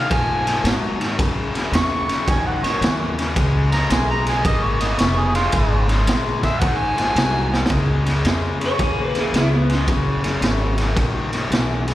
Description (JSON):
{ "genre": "electric blues shuffle", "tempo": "110 BPM", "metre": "4/4", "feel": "swing 66% on 8ths", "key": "Db mixolydian", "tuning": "A4 = 441 Hz", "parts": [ { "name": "mellow harmonica", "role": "second line", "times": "0.0-7.7 s", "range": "F4 to Db6", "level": "-23 LUFS", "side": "right 1 dB", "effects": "overdrive, plate reverb, slapback echo" }, { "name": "cranked stack guitar", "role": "riff", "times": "0.0-11.9 s", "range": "Gb2 to Cb4", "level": "-24 LUFS", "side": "left 4 dB", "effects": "overdrive, spring reverb, slapback echo" }, { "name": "upright bass", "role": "bass", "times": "0.0-11.9 s", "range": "F1 to Bb2", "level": "-22 LUFS", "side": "equal", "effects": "none" }, { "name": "raw garage drum kit", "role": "drums", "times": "0.1-11.9 s", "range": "kick drum, ride cymbal, snare drum", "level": "-21 LUFS", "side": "right 1 dB", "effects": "none" }, { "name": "electric guitar through a small old amp", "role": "melody", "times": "8.7-10.8 s", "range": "Cb4 to Db5", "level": "-24 LUFS", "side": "equal", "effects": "plate reverb, slapback echo" } ], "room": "light reverb", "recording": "live gig heard through the venue's PA, recital hall reverb", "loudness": "-17 LUFS", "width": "side -14 dB against mid", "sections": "0.0-7.7 A section; 7.7-11.9 A section", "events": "harmonica solo 0.0-7.7; drum fill 7.4; clean electric guitar solo 7.7-11.9", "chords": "0.0 Ab7sus2; 1.2 Gb5; 3.4 Db7; 6.6 Ab7; 7.7 Db9; 9.9 Gb9" }